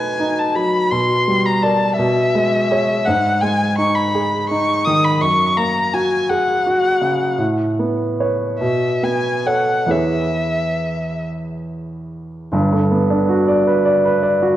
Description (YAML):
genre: classical, impressionist duo for violin and grand piano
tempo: 44-57 BPM (dotted quarters)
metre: 6/8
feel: rubato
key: E major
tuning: A4 = 438 Hz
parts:
  - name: warm violin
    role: melody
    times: 0.0-11.3 s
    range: E5 to D#6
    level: -18 LUFS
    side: left 1 dB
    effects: none
  - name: clear baby grand piano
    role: accompaniment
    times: 0.0-14.6 s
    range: G1 to D5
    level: -17 LUFS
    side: equal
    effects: none
room: wet recital hall reverb, RT60 1.6 s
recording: worn, warbling old tape, cassette tape, warbly pitch drift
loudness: -15 LUFS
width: side -13 dB against mid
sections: 0.0-12.5 A section; 12.5-14.6 B section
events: none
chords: 0.0 B7; 0.9 Csus2/B; 2.0 C#m7/B; 3.1 G#5; 5.2 F#add9; 7.4 Aadd9; 8.6 Bsus2; 9.9 E6; 12.5 Gmaj7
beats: | 0.91 1.97 | 3.06 4.13 | 5.20 6.30 | 7.39 8.61 | 9.91 11.26 | 12.53 13.67